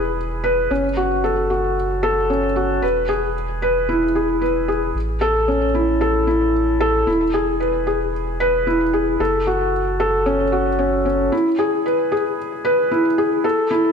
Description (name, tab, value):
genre	piano and strings electronica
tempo	113 BPM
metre	4/4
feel	straight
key	E major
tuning	A4 = 440 Hz
part	felt-muted upright piano	riff	0.0-13.9 s	C#4 to B4	-17 LUFS	left 1 dB	ping-pong delay
part	round analog bass	bass	0.0-11.3 s	E1 to A1	-25 LUFS	right 1 dB	none
room	moderate echo chamber reverb, RT60 2.0 s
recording	none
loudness	-17 LUFS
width	side -6 dB against mid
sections	0.0-11.3 A section; 11.3-13.9 B section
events	build-up 11.3-13.9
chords	0.0 E; 0.7 F#m; 2.8 E; 5.0 A; 7.1 E; 9.2 F#m; 11.3 E